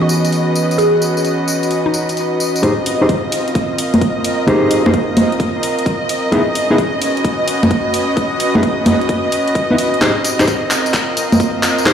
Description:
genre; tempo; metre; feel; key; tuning
UK garage, two-step garage; 130 BPM; 4/4; swing 67% on 16ths; F minor; A4 = 439 Hz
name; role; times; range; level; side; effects
mallet-like synth pluck; melody; 0.0-2.6 s; Eb4 to Ab4; -19 LUFS; equal; chorus, phaser, digital delay
rich studio violin section; sustained chords; 0.0-11.9 s; Eb5; -21 LUFS; right 2 dB; sidechain pumping
mellow electric guitar; stabs; 0.0-11.9 s; Fb3 to C5; -17 LUFS; equal; vintage 12-bit sampler grit, low-pass filter, digital delay
airy breathy pad; texture; 0.0-11.9 s; C4 to Eb5; -19 LUFS; left 1 dB; chorus, sidechain pumping
garage drum kit; drums; 0.1-11.9 s; congas, handclaps, hi-hat, tambourine; -17 LUFS; equal; none
electronic kick drum; drums; 2.6-11.9 s; none; -18 LUFS; left 1 dB; high-pass filter on kick
room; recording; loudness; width
moderate plate reverb, RT60 1.6 s; played on a big sound system in a bare room, large studio reverb, vinyl crackle; -13 LUFS; side -8 dB against mid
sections
0.0-2.6 A section; 2.6-11.9 B section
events
build-up 2.6-11.9; filter sweep on clean electric guitar 2.6-11.9; drum fill 10.0-11.9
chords
0.0 Dbm9; 2.6 Fm9; 6.3 Db7sus2; 10.0 F7(no3)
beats
0.32 | 0.78 1.25 1.71 2.17 | 2.63 3.09 3.55 4.01 | 4.48 4.94 5.40 5.86 | 6.32 6.78 7.25 7.71 | 8.17 8.63 9.09 9.55 | 10.02 10.48 10.94 11.40 | 11.86

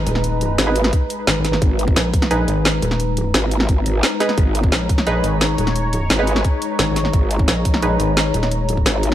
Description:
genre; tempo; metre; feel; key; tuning
dark technical drum and bass; 174 BPM; 4/4; straight; G# minor; A4 = 440 Hz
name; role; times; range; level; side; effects
sweeping resonant pad; sustained chords; 0.0-9.1 s; G#3 to A#5; -24 LUFS; left 2 dB; chorus, sidechain pumping
filtered dub chord stab; stabs; 0.0-8.9 s; D#4 to B4; -25 LUFS; right 3 dB; chorus, tape echo
metallic wobble bass; bass; 0.0-8.8 s; D#1 to A#1; -20 LUFS; equal; chorus
drum and bass drum kit; drums; 0.1-9.1 s; hi-hat, snare drum; -20 LUFS; equal; overdrive
growl bass; bass; 0.6-9.1 s; G#1; -19 LUFS; equal; chorus, overdrive, sidechain pumping
electronic kick drum; drums; 0.9-8.8 s; none; -17 LUFS; equal; none
room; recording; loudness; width
light reverb, digital ambience; dark, warm production; -15 LUFS; side -12 dB against mid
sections
0.0-9.1 A section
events
none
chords
0.0 G#m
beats
| 0.24 0.58 0.93 1.27 | 1.62 1.96 2.31 2.65 | 3.00 3.34 3.69 4.03 | 4.38 4.72 5.07 5.41 | 5.76 6.10 6.45 6.79 | 7.14 7.48 7.83 8.17 | 8.52 8.86

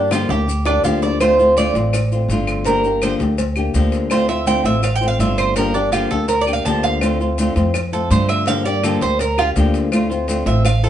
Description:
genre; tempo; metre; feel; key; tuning
latin, Cuban son and guajira; 165 BPM; 4/4; straight; D minor; A4 = 437 Hz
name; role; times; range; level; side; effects
flamenco guitar; accompaniment; 0.0-10.9 s; D3 to G4; -20 LUFS; left 2 dB; none
Cuban tres; arpeggios; 0.0-10.9 s; D4 to A5; -18 LUFS; right 3 dB; none
upright bass; bass; 0.0-10.9 s; G1 to G2; -20 LUFS; equal; none
bongos and cowbell; percussion; 0.1-10.8 s; none; -29 LUFS; left 2 dB; none
claves; percussion; 0.1-10.8 s; none; -28 LUFS; left 1 dB; none
maracas; percussion; 0.1-10.9 s; none; -35 LUFS; left 5 dB; none
room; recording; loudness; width
wet studio reverb, RT60 0.7 s; band playing live in one room, nothing above 10.6 kHz; -15 LUFS; side -10 dB against mid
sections
0.0-1.2 A section; 1.2-10.9 B section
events
drum fill 0.0-1.2; Cuban tres solo 1.2-10.9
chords
0.0 Gm7; 1.2 Dm7; 2.7 Gm7; 4.1 Dm7; 5.6 Gm7; 7.0 Dm7; 8.5 Gm7; 9.9 Dm7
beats
0.12 0.48 0.84 | 1.21 1.57 1.93 2.30 | 2.66 3.02 3.39 3.75 | 4.11 4.48 4.84 5.20 | 5.57 5.93 6.29 6.66 | 7.02 7.38 7.75 8.11 | 8.47 8.84 9.20 9.56 | 9.93 10.29 10.65

